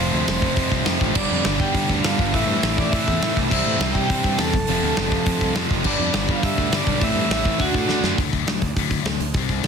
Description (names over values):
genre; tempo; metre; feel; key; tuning
punk rock; 206 BPM; 4/4; straight; G mixolydian; A4 = 440 Hz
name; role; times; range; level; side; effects
vibraphone with hard mallets; melody; 0.0-8.0 s; F4 to E6; -26 LUFS; equal; none
overdriven electric guitar; riff; 0.0-8.2 s; F2 to D4; -26 LUFS; right 14 dB; none
sludgy distorted guitar; riff; 0.0-9.7 s; F2 to F#4; -26 LUFS; left 15 dB; overdrive
thick fuzz guitar; riff; 0.0-8.2 s; F2 to D4; -26 LUFS; equal; distortion
fuzz picked electric bass; bass; 0.0-9.7 s; F1 to D3; -26 LUFS; equal; overdrive
big rock drum kit; drums; 0.3-9.7 s; crash cymbal, hi-hat, kick drum, snare drum; -23 LUFS; equal; soft clipping on kick
room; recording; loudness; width
little or no reverb; dense, heavily limited modern master; -18 LUFS; side -6 dB against mid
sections
0.0-8.2 A section; 8.2-9.7 B section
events
drum fill 7.9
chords
0.0 F; 1.2 G; 2.3 Am; 3.5 C; 4.5 F; 5.9 G; 7.0 Am; 7.6 D